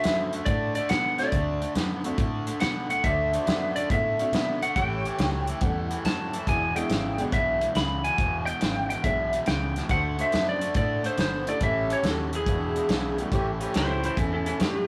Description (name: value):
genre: electric blues shuffle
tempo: 140 BPM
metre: 4/4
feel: swing 68% on 8ths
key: A mixolydian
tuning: A4 = 440 Hz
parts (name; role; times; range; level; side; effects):
- lightly driven lead guitar; melody; 0.0-14.9 s; C#4 to B5; -30 LUFS; equal; none
- overdriven semi-hollow guitar; riff; 0.0-14.9 s; E2 to B3; -35 LUFS; equal; none
- warm horn section; stabs; 0.0-0.4, 3.0-7.2, 9.9-14.1 s; A3 to E5; -36 LUFS; equal; none
- warm soul drum kit; drums; 0.0-14.7 s; hi-hat, kick drum, snare drum; -32 LUFS; equal; none
- fingered electric bass; bass; 0.1-14.9 s; E1 to B2; -34 LUFS; equal; none
- honky-tonk upright piano; accompaniment; 1.2-14.9 s; F3 to A4; -38 LUFS; equal; none
room: moderate studio reverb, RT60 0.6 s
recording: rough rehearsal-room recording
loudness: -26 LUFS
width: mono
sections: 0.0-13.3 A section; 13.3-14.9 B section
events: lead electric guitar solo 13.3-14.9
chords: 0.0 D7; 4.8 A7; 6.5 E7; 9.9 D7; 11.6 A7; 12.5 E7; 13.3 A7